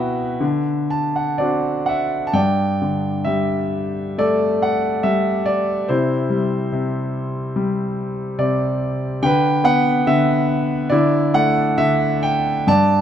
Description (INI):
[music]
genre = classical, lyrical solo piano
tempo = 70 BPM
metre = 4/4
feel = uneven beats, rubato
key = G major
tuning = A4 = 440 Hz
[part]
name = bright concert grand piano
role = solo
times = 0.0-13.0 s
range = G2 to A5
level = -17 LUFS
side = equal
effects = none
[sound]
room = light reverb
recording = close, detailed microphones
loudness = -17 LUFS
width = side -9 dB against mid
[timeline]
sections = 0.0-2.4 A section; 2.4-13.0 B section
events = grand piano fill 0.4-2.4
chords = 0.4 D7; 2.4 Gsus2; 5.9 C; 9.2 D69; 10.9 Dsus2